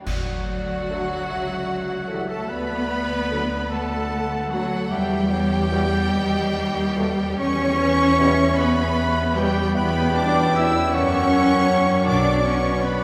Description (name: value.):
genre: classical, slow romantic movement for symphony orchestra.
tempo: 46-54 BPM (dotted quarters).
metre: 6/8.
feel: rubato.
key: D major, B minor from 9.8 s.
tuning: A4 = 440 Hz.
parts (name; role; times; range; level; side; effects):
warm oboe; second line; 0.0-13.0 s; F#4 to E5; -34 LUFS; equal; none.
clear studio violin section; melody; 0.1-13.0 s; F#5 to E6; -33 LUFS; equal; none.
dark clarinet; second line; 0.1-13.0 s; B4 to G5; -31 LUFS; equal; none.
mellow concert flute; second line; 0.1-13.0 s; F#5 to E6; -33 LUFS; equal; none.
rich studio violin section; second line; 0.1-13.0 s; F#4 to E5; -33 LUFS; equal; none.
rich studio viola section; accompaniment; 0.1-13.0 s; F#3 to E4; -28 LUFS; equal; none.
clear studio cello section; bass; 0.1-13.0 s; F#3 to E4; -29 LUFS; equal; none.
rich studio double bass section; bass; 0.1-13.0 s; B1 to F#2; -28 LUFS; equal; none.
clash cymbals and concert bass drum; percussion; 0.1-1.6 s; none; -34 LUFS; equal; none.
mellow trombone section; sustained chords; 0.9-13.0 s; F#2 to A3; -35 LUFS; equal; none.
warm French horn section; sustained chords; 0.9-13.0 s; A3 to B4; -36 LUFS; equal; none.
timpani; percussion; 12.1-13.0 s; B2; -35 LUFS; equal; none.
room: wet cathedral reverb, RT60 5.1 s.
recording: none.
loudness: -21 LUFS.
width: mono.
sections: 0.1-13.0 A section.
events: band accent 0.1-0.9.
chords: 0.1 D; 1.3 A/C#; 2.5 D; 4.9 Em; 6.1 B7/D#; 7.4 Em; 9.8 C#m7b5/E; 10.9 F#; 12.1 Bm.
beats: | 0.06 1.28 | 2.49 3.72 | 4.91 6.12 | 7.40 8.59 | 9.77 10.95 | 12.07.